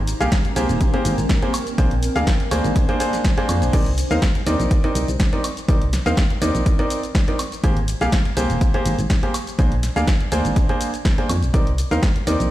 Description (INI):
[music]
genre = piano house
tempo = 123 BPM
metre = 4/4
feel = swing 53% on 16ths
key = C minor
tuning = A4 = 442 Hz
[part]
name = solid FM bass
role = bass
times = 0.0-12.5 s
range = Eb1 to F2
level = -21 LUFS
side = equal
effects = sidechain pumping
[part]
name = granular cloud pad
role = texture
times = 0.0-3.7 s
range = C4 to Bb5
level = -29 LUFS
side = equal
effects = built-in reverb, sidechain pumping
[part]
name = punchy analog drum machine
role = drums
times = 0.1-12.5 s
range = crash cymbal, hi-hat, shaker, snare drum, woodblock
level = -28 LUFS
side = equal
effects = none
[part]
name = clear baby grand piano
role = riff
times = 0.2-12.5 s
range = Bb3 to F5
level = -23 LUFS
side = right 1 dB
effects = sidechain pumping, ping-pong delay
[part]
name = electronic kick drum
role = drums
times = 0.3-12.1 s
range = none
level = -19 LUFS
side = equal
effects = none
[sound]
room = little or no reverb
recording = played on a big sound system in a bare room, stone room reverb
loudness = -17 LUFS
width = side -14 dB against mid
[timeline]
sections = 0.0-3.7 A section; 3.7-12.5 A section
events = drop 0.0-3.7, 3.7-12.5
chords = 0.0 Abmaj9; 1.5 Bb9; 3.7 Cm9; 7.4 Abmaj9; 9.3 Bb9; 11.5 Cm9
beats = 0.32 0.81 1.29 | 1.78 2.27 2.76 3.25 | 3.73 4.22 4.71 5.20 | 5.68 6.17 6.66 7.15 | 7.64 8.12 8.61 9.10 | 9.59 10.07 10.56 11.05 | 11.54 12.03